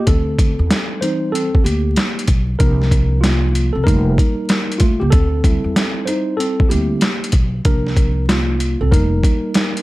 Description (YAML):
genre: hip hop, jazz-hop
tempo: 95 BPM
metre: 4/4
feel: swing 66% on 16ths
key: D phrygian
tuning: A4 = 439 Hz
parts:
  - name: mellow tine electric piano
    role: accompaniment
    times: 0.0-9.8 s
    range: E3 to C5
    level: -20 LUFS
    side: equal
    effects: medium stereo tremolo, plate reverb
  - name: upright bass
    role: bass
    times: 0.1-9.2 s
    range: F1 to E2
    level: -17 LUFS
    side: equal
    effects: none
  - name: boom bap sampler-style drum kit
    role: drums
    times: 0.1-9.8 s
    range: hi-hat, kick drum, snare drum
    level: -16 LUFS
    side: equal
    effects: overdrive
room: light reverb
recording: vinyl crackle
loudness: -14 LUFS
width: side -18 dB against mid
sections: 0.1-9.8 A section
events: tine electric piano solo 0.1-9.8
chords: 0.1 D9sus4; 2.6 C9sus4; 3.9 F9sus4; 5.1 D9sus4; 7.7 C9sus4; 8.9 F9sus4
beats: | 0.07 0.71 1.34 1.97 | 2.60 3.23 3.86 4.50 | 5.13 5.76 6.39 7.02 | 7.65 8.29 8.92 9.55